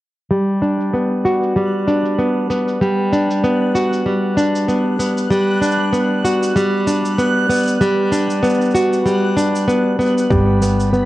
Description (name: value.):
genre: folktronica.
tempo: 96 BPM.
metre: 4/4.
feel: swing 56% on 16ths.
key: G major.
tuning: A4 = 440 Hz.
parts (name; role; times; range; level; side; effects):
nylon-string guitar; arpeggios; 0.3-11.1 s; G3 to F#4; -15 LUFS; equal; low-pass filter, analog delay.
cabasa; drums; 0.3-11.1 s; none; -33 LUFS; right 1 dB; overdrive, low-pass filter on perc, cassette tape, low-pass filter on room.
backwards swelling texture; texture; 1.7-11.1 s; F#6 to B6; -28 LUFS; right 2 dB; built-in reverb.
upright bass; bass; 10.3-11.1 s; G1; -17 LUFS; equal; none.
electronic kick drum; drums; 10.3-10.4 s; none; -19 LUFS; equal; overdrive, cassette tape.
room: moderate spring reverb, RT60 2.5 s.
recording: home recording on cassette.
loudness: -14 LUFS.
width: side -16 dB against mid.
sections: 0.3-10.3 A section.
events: filter sweep on nylon-string guitar 0.3-10.3.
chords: 0.3 Gmaj7.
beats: | 0.31 0.94 1.56 2.19 | 2.81 3.44 4.06 4.68 | 5.31 5.93 6.56 7.18 | 7.81 8.44 9.06 9.69 | 10.31 10.94.